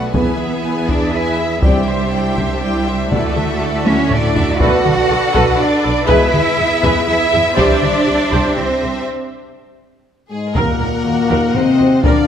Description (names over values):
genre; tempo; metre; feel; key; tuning
cinematic, epic orchestral film score; 121 BPM; 3/4; straight; unclear; A4 = 442 Hz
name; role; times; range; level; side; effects
clear studio violin section; melody; 0.0-12.3 s; G#4 to G#5; -26 LUFS; left 3 dB; none
warm symphonic violin section; second line; 0.0-12.3 s; Gb4 to F#5; -22 LUFS; left 1 dB; none
warm symphonic viola section; accompaniment; 0.0-12.3 s; E4 to Gb5; -21 LUFS; right 1 dB; none
rich studio string section; sustained chords; 0.0-9.1 s; B3 to E5; -23 LUFS; left 1 dB; none
rich chamber double bass section; bass; 0.0-12.1 s; Bb1 to E2; -22 LUFS; right 2 dB; none
rich symphonic cello section; bass; 0.0-12.1 s; Bb2 to F#4; -19 LUFS; right 3 dB; none
warm trombone section; sustained chords; 0.1-7.8, 10.3-12.3 s; G#2 to C4; -26 LUFS; right 3 dB; none
taiko ensemble; drums; 0.1-12.3 s; none; -19 LUFS; equal; none
warm French horn section; sustained chords; 0.2-7.7, 10.3-12.3 s; G#3 to E5; -18 LUFS; left 4 dB; none
room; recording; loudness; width
moderate scoring stage reverb, RT60 1.7 s; none; -13 LUFS; side -8 dB against mid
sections
0.0-10.6 A section; 10.6-12.3 B section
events
drum fill 3.9-4.6, 9.8-10.6; break 9.1-10.6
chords
0.1 E; 1.6 Cadd9; 3.1 Dadd9; 4.6 Bm7; 6.1 E; 7.6 Cadd9; 9.1 N.C.; 10.6 Ebm